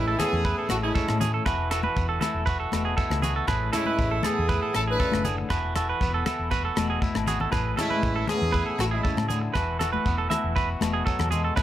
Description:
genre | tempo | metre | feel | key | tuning
highlife guitar band | 119 BPM | 4/4 | straight | A major | A4 = 440 Hz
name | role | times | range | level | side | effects
bright horn section | melody | 0.0-9.3 s | G#3 to B4 | -28 LUFS | equal | none
twangy electric guitar | accompaniment | 0.0-11.6 s | A2 to G#4 | -32 LUFS | left 4 dB | none
semi-hollow electric guitar | arpeggios | 0.0-11.6 s | G#4 to E5 | -29 LUFS | right 6 dB | analog delay
hollow-body short-scale fingered electric bass | bass | 0.0-11.6 s | E1 to A2 | -29 LUFS | equal | none
tight funk drum kit | drums | 0.2-11.6 s | hi-hat, kick drum, rim click | -30 LUFS | equal | none
agogo bells | percussion | 0.2-11.6 s | none | -38 LUFS | left 13 dB | none
congas | percussion | 0.2-11.4 s | none | -32 LUFS | left 5 dB | none
shekere | percussion | 0.2-11.6 s | none | -37 LUFS | right 2 dB | none
room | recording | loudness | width
moderate spring reverb, RT60 2.4 s | none | -23 LUFS | side -12 dB against mid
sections
0.0-11.6 A section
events
drum fill 7.0-7.5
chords
0.0 Amaj7; 1.5 Esus2; 3.5 Amaj7; 5.5 Esus2; 7.5 Amaj7; 9.5 Esus2

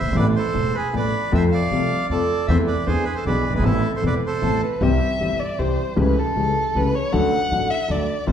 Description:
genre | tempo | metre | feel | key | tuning
tango | 156 BPM | 3/4 | rubato | A harmonic minor, C major from 4.8 s | A4 = 439 Hz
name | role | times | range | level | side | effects
bandoneon | melody | 0.0-4.6 s | E4 to F5 | -24 LUFS | right 2 dB | none
warm concert grand piano | accompaniment | 0.0-8.3 s | E1 to A4 | -22 LUFS | left 2 dB | none
upright bass | bass | 0.0-8.3 s | E1 to F2 | -24 LUFS | right 2 dB | none
dark violin | second line | 4.4-8.3 s | A4 to F#5 | -23 LUFS | left 1 dB | none
room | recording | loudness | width
wet large studio reverb, RT60 1.2 s | heard from further back in the room | -18 LUFS | side -8 dB against mid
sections
0.0-4.8 A section; 4.8-8.3 B section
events
violin solo 4.8-8.3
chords
0.2 Asus2; 1.3 F; 2.5 Am/E; 2.9 E7; 3.6 Amadd9; 4.8 C; 6.0 A7/C#; 7.1 D

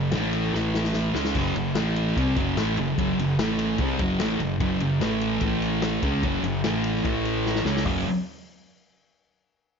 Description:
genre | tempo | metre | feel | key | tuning
garage rock duo or trio | 148 BPM | 4/4 | straight | F# minor | A4 = 440 Hz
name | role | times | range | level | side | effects
thick fuzz guitar | riff | 0.0-8.0 s | F#2 to C#4 | -24 LUFS | equal | distortion
fuzz fingered electric bass | bass | 0.0-8.0 s | F#1 to C#2 | -31 LUFS | right 1 dB | overdrive
vintage drum kit | drums | 0.1-8.0 s | crash cymbal, hi-hat, kick drum, ride cymbal, snare drum, toms | -30 LUFS | left 2 dB | none
room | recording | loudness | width
light reverb, small room ambience | 1960s-style stereo, nothing above 7.5 kHz | -22 LUFS | side -6 dB against mid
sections
0.0-1.4 A section; 1.4-7.9 A section; 7.9-9.5 B section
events
drum fill 0.5-1.4, 7.4-7.9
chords
0.1 A5; 1.2 C#5; 1.4 F#5; 1.8 A5; 2.2 F#m; 3.4 A5; 3.8 F#m; 5.0 A5; 6.0 F#5; 6.6 A5; 7.7 C#5; 7.9 F#5

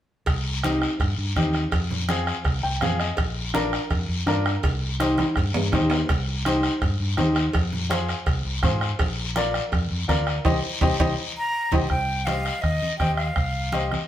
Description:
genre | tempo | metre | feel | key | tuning
latin, cumbia | 165 BPM | 4/4 | straight | C minor | A4 = 441 Hz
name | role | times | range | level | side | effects
fingered electric bass | bass | 0.3-13.9 s | Bb1 to Ab2 | -27 LUFS | equal | none
bombo | percussion | 0.3-14.1 s | none | -26 LUFS | right 1 dB | none
congas | percussion | 0.3-14.1 s | none | -31 LUFS | right 1 dB | none
cowbell and timbales | percussion | 0.3-11.8 s | none | -31 LUFS | right 2 dB | none
guiro | percussion | 0.3-14.1 s | none | -33 LUFS | left 4 dB | none
warm upright piano | accompaniment | 0.6-14.0 s | C4 to G5 | -26 LUFS | left 1 dB | none
breathy concert flute | melody | 11.4-13.9 s | Eb5 to Bb5 | -26 LUFS | equal | none
room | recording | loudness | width
wet studio reverb, RT60 0.8 s | band playing live in one room | -21 LUFS | side -11 dB against mid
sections
0.3-11.9 A section; 11.9-14.1 B section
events
upright piano fill 2.5-3.2, 10.8-11.9; drum fill 5.2-6.1, 11.2-11.9; band accent 10.5-11.9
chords
0.3 Cm; 1.7 Fm; 3.2 Bb; 4.6 Cm; 7.5 Fm; 9.0 Bb; 10.5 Cm

